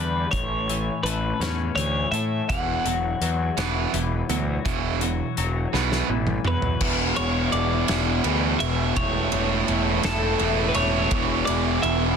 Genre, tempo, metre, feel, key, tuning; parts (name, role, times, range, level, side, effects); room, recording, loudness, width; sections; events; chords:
quiet-loud alternative rock; 56 BPM (dotted quarters); 6/8; straight; A4 = 440 Hz
twelve-string electric guitar; melody; 0.0-12.2 s; A4 to F#5; -28 LUFS; left 1 dB; analog delay
twelve-string electric guitar; arpeggios; 0.0-6.8 s; A2 to C#4; -30 LUFS; left 10 dB; lush chorus, analog delay
fuzz picked electric bass; bass; 0.0-12.1 s; E1 to A2; -26 LUFS; equal; overdrive
loose indie drum kit; drums; 0.3-12.0 s; crash cymbal, hi-hat, kick drum, ride cymbal, snare drum, toms; -29 LUFS; equal
overdriven electric guitar; riff; 2.5-12.2 s; E2 to A3; -26 LUFS; right 15 dB
rich studio string section; sustained chords; 6.8-12.2 s; E3 to E5; -35 LUFS; left 2 dB
fuzz guitar; riff; 6.8-12.2 s; E2 to A3; -28 LUFS; left 15 dB; distortion
little or no reverb; dense, heavily limited modern master; -21 LUFS; side -6 dB against mid
0.0-6.8 A section; 6.8-12.2 B section
drum fill 5.7-6.8
0.3 A; 2.5 Esus2; 6.8 E; 9.0 A/E; 11.1 E